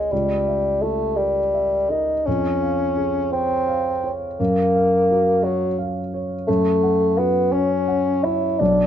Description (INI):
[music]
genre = classical, romantic duo for bassoon and grand piano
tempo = 57 BPM (dotted quarters)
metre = 6/8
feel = rubato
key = Db major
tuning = A4 = 439 Hz
[part]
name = mellow bassoon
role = melody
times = 0.0-8.9 s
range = Gb3 to E4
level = -19 LUFS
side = left 1 dB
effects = none
[part]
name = dark grand piano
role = accompaniment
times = 0.0-8.9 s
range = B1 to F#5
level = -23 LUFS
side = equal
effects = none
[sound]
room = moderate stone room reverb, RT60 1.3 s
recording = dark, warm production, nothing above 7.7 kHz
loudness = -18 LUFS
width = side -9 dB against mid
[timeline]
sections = 0.0-8.9 A section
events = none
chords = 0.1 Dbdim7; 2.3 Db/F; 4.4 Gbmaj7; 6.5 F#m